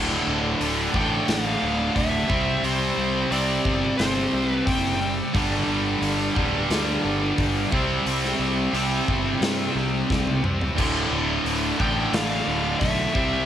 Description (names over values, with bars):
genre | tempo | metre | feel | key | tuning
hard rock | 88 BPM | 4/4 | straight | unclear | A4 = 441 Hz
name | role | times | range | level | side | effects
overdriven tonewheel organ | sustained chords | 0.0-13.5 s | G3 to D5 | -37 LUFS | equal | none
distorted electric guitar | riff | 0.0-13.5 s | D2 to C4 | -28 LUFS | left 8 dB | overdrive
distorted electric guitar | riff | 0.0-13.5 s | D2 to C4 | -26 LUFS | right 7 dB | overdrive
heavy high-gain guitar | riff | 0.0-13.5 s | D2 to C4 | -28 LUFS | left 1 dB | distortion
fuzz fingered electric bass | bass | 0.0-13.4 s | D1 to G2 | -29 LUFS | equal | overdrive
big rock drum kit | drums | 0.1-13.3 s | crash cymbal, hi-hat, kick drum, snare drum, toms | -28 LUFS | equal | none
bluesy overdriven lead guitar | melody | 1.0-5.1, 11.8-13.5 s | C5 to G5 | -28 LUFS | left 1 dB | distortion, cassette tape
room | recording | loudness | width
light reverb | home recording on cassette | -20 LUFS | side -10 dB against mid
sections
0.0-13.5 A section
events
drum fill 10.1-10.8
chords
0.0 Dm; 2.3 C5; 5.4 G5; 7.7 C5; 10.8 Dm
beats
0.60 1.28 1.96 | 2.64 3.32 4.00 4.67 | 5.35 6.03 6.71 7.39 | 8.07 8.74 9.42 10.10 | 10.78 11.46 12.13 12.81